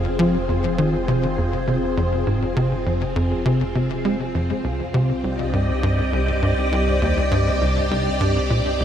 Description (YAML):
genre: ambient, sequencer-driven space music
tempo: 101 BPM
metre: 4/4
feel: straight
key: F dorian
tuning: A4 = 440 Hz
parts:
  - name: string machine, full ensemble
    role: sustained chords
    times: 0.0-8.8 s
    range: C4 to Eb5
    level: -23 LUFS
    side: equal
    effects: ensemble chorus
  - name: tight sequencer bass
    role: riff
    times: 0.0-8.8 s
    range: C2 to Ab3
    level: -21 LUFS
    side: equal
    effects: analog chorus, ping-pong delay
  - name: warm sub bass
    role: bass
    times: 0.0-8.8 s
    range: F1 to C2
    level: -27 LUFS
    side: equal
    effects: none
room: moderate huge ambient reverb, RT60 8.1 s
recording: none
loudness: -18 LUFS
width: side -9 dB against mid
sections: 0.0-8.8 A section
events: none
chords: 0.0 Fm; 4.6 Cmadd9